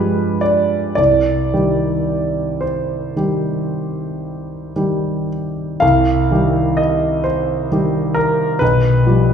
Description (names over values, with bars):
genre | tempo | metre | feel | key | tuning
classical, romantic nocturne for solo piano | 36-45 BPM (dotted quarters) | 9/8 | rubato | C minor | A4 = 440 Hz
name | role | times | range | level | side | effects
warm concert grand piano | solo | 0.0-9.3 s | B1 to F5 | -15 LUFS | equal | none
room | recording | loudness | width
wet recital hall reverb, RT60 1.5 s | heard from further back in the room | -15 LUFS | side -7 dB against mid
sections
0.0-5.8 A section; 5.8-9.3 A section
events
none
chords
0.0 G7b9; 1.0 Cm; 8.6 G7/B